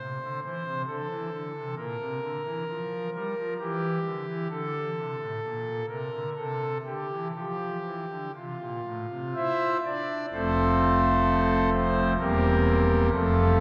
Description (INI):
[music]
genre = classical, chorale-style piece for pipe organ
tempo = 60-68 BPM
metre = 3/4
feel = rubato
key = F major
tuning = A4 = 443 Hz
[part]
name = pipe organ, foundations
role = solo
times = 0.0-13.6 s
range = E1 to E5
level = -28 LUFS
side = equal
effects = none
[sound]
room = wet church reverb, RT60 2.9 s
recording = none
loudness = -28 LUFS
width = mono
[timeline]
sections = 0.0-10.3 A section; 10.3-13.6 B section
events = none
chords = 0.0 Am (rootless); 0.9 D5; 1.8 Gm/Bb; 3.6 Dsus24; 4.5 D5; 5.4 Bbmaj9; 6.4 C; 7.4 F; 12.2 C7/E